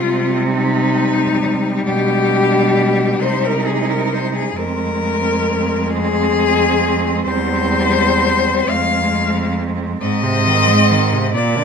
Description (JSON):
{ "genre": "classical, lyrical piece for cello ensemble", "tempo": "44 BPM (dotted quarters)", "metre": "6/8", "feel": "rubato", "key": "C minor", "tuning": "A4 = 440 Hz", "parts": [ { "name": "rich cello", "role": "melody", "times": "0.0-11.6 s", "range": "Eb4 to F5", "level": "-17 LUFS", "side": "left 5 dB", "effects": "none" }, { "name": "rich cello", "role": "second line", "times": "0.0-11.6 s", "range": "Bb3 to Eb4", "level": "-22 LUFS", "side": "right 12 dB", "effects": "none" }, { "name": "rich cello", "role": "accompaniment", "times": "0.0-11.6 s", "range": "Ab2 to Ab3", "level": "-21 LUFS", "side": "left 2 dB", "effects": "none" }, { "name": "clear cello", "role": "bass", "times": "0.0-11.6 s", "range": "E2 to C3", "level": "-20 LUFS", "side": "right 3 dB", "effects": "none" } ], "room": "moderate recital hall reverb, RT60 1.4 s", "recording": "none", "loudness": "-14 LUFS", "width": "side -6 dB against mid", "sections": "0.0-11.6 A section", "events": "none", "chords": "0.0 Cm; 1.9 G/B; 3.2 Cm; 4.6 Fm; 7.2 C/E; 8.7 Fm; 10.0 Ab" }